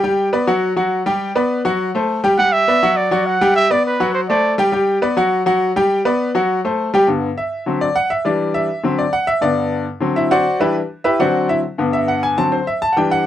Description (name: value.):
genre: latin.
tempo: 204 BPM.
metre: 4/4.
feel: straight.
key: G major.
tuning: A4 = 440 Hz.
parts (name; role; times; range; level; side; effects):
bright grand piano; accompaniment; 0.0-13.3 s; G2 to A5; -15 LUFS; left 1 dB; none.
warm trumpet; melody; 2.4-4.6 s; B4 to F#5; -15 LUFS; right 3 dB; none.
room: light reverb.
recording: dry, close 1970s-style studio recording.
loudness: -15 LUFS.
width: side -11 dB against mid.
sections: 0.0-7.1 A section; 7.1-13.3 B section.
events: grand piano solo 7.1-13.3.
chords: 0.0 G; 0.6 N.C.; 1.2 Gmaj7; 1.8 F#dim; 2.4 G; 3.0 D; 3.6 Em9; 4.1 D7; 4.7 G; 5.3 N.C.; 5.9 Gmaj7; 6.5 F#dim; 7.1 G; 7.7 D7; 8.3 Em7; 8.8 D7; 9.4 G; 10.0 D7; 10.6 Em7; 11.2 D7; 11.8 G; 12.4 D7.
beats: | 0.03 0.33 0.62 0.91 | 1.21 1.50 1.79 2.09 | 2.38 2.67 2.97 3.26 | 3.56 3.85 4.14 4.44 | 4.73 5.02 5.32 5.61 | 5.90 6.20 6.49 6.78 | 7.08 7.37 7.66 7.96 | 8.25 8.54 8.84 9.13 | 9.43 9.72 10.02 10.31 | 10.60 10.90 11.19 11.49 | 11.78 12.08 12.37 12.67 | 12.96 13.26.